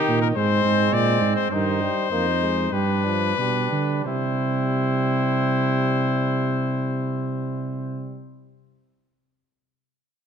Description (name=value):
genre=classical, imitative canzona for brass ensemble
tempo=86-109 BPM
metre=4/4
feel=straight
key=unclear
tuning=A4 = 440 Hz
part: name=warm cornet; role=melody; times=0.0-8.2 s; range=G4 to D5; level=-25 LUFS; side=left 10 dB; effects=none
part: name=mellow trumpet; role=second line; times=0.0-8.2 s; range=C4 to E4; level=-29 LUFS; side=right 5 dB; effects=none
part: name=clear euphonium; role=accompaniment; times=0.0-8.2 s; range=Eb3 to Bb3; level=-28 LUFS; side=right 3 dB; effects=none
part: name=dark tuba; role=bass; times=0.1-8.2 s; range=F2 to D3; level=-24 LUFS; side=right 2 dB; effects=none
room=moderate scoring stage reverb, RT60 1.8 s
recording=close, detailed microphones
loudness=-20 LUFS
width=side -7 dB against mid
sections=0.0-4.1 A section; 4.1-9.6 B section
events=slowing down 0.0-4.1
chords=0.4 Ab; 1.5 Cm/G; 2.7 G; 4.1 C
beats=0.37 0.94 | 1.52 2.12 2.73 3.38 | 4.06 4.76 5.45 6.14 | 6.83 7.52 8.22